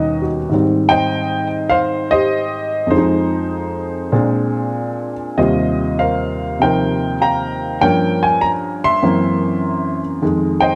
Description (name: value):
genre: solo jazz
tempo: 100 BPM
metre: 4/4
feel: swing 68% on 8ths, rubato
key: unclear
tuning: A4 = 441 Hz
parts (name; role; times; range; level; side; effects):
- warm upright piano; solo; 0.0-10.8 s; Eb2 to C6; -17 LUFS; equal; none
room: moderate spring reverb, RT60 2.5 s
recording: none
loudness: -17 LUFS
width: mono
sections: 0.0-10.8 A section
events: none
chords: 0.0 Eb7alt; 0.5 Abmaj7; 2.9 Fm7; 4.1 Bb9; 5.4 Eb69; 7.8 Gm7b5; 9.0 Gb7#11; 10.2 Fm9